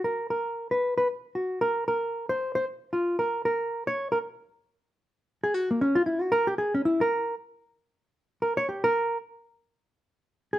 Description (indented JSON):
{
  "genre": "jazz",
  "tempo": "229 BPM",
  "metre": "4/4",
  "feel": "swing 61% on 8ths",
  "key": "Bb minor",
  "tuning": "A4 = 440 Hz",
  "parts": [
    { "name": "hollow-body jazz guitar", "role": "solo", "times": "0.0-10.6 s", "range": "Bb3 to Db5", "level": "-24 LUFS", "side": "equal", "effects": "none" }
  ],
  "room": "moderate studio reverb, RT60 0.8 s",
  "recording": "none",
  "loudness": "-25 LUFS",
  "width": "side -14 dB against mid",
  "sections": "0.0-5.0 A section; 5.0-10.6 B section",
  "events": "none",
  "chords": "none"
}